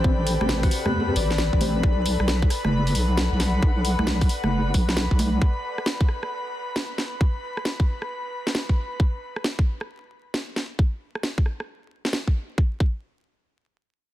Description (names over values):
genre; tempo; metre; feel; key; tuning
UK garage, two-step garage; 134 BPM; 4/4; swing 64% on 16ths; unclear; A4 = 440 Hz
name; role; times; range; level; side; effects
Celtic harp; melody; 0.0-3.1 s; F#4 to D5; -31 LUFS; left 6 dB; none
airy breathy pad; sustained chords; 0.0-9.0 s; B4 to B5; -32 LUFS; left 1 dB; chorus, sidechain pumping
deep mellow chord stab; stabs; 0.0-1.8 s; C4 to D5; -31 LUFS; left 2 dB; chorus, phaser, cassette tape, ping-pong delay
deep soft wobble bass; bass; 0.0-5.4 s; F#1 to E2; -23 LUFS; equal; chorus
electronic kick drum; drums; 0.0-13.0 s; none; -21 LUFS; equal; none
ethereal airy pad; texture; 0.0-5.4 s; A4 to G5; -34 LUFS; left 2 dB; ensemble chorus, built-in reverb, sidechain pumping
garage drum kit; drums; 0.3-12.2 s; congas, hi-hat, rim click, snare drum; -27 LUFS; right 1 dB; none
room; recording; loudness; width
little or no reverb; dense, heavily limited modern master, vinyl crackle; -21 LUFS; side -14 dB against mid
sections
0.0-12.6 A section; 12.6-14.1 B section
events
none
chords
0.0 Am9; 1.8 Bm7; 5.4 N.C.